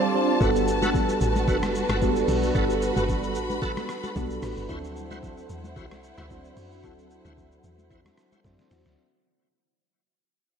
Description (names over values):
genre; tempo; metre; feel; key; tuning
amapiano; 112 BPM; 4/4; swing 55% on 16ths; unclear; A4 = 440 Hz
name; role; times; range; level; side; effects
soft electric-piano-like synth keys; accompaniment; 0.0-9.0 s; F3 to C5; -26 LUFS; right 2 dB; chorus, phaser
warm symphonic string section; sustained chords; 0.0-8.9 s; E4 to B5; -31 LUFS; equal; sidechain pumping
bright tonewheel organ; stabs; 0.4-8.4 s; E4 to C5; -34 LUFS; equal; chorus vibrato, slow rotary speaker, tape echo
deep log drum bass; bass; 0.4-9.0 s; F#1 to F#2; -30 LUFS; equal; none
lo-fi sampler-style drum kit; drums; 0.4-9.0 s; hi-hat, kick drum, rim click, shaker, snare drum; -31 LUFS; equal; overdrive
congas; percussion; 0.8-8.8 s; none; -36 LUFS; left 3 dB; none
room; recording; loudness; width
moderate lush hall reverb, RT60 2.4 s; dreamy mix soaked in reverb; -22 LUFS; side -7 dB against mid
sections
0.0-9.0 A section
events
break 0.0-0.4; drop 0.0-9.0; fade-out 0.0-9.0; drum fill 8.4-9.0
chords
0.4 Gmaj9; 4.7 D9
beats
| 0.41 0.94 1.48 2.02 | 2.55 3.09 3.62 4.16 | 4.69 5.23 5.76 6.30 | 6.84 7.37 7.91 8.44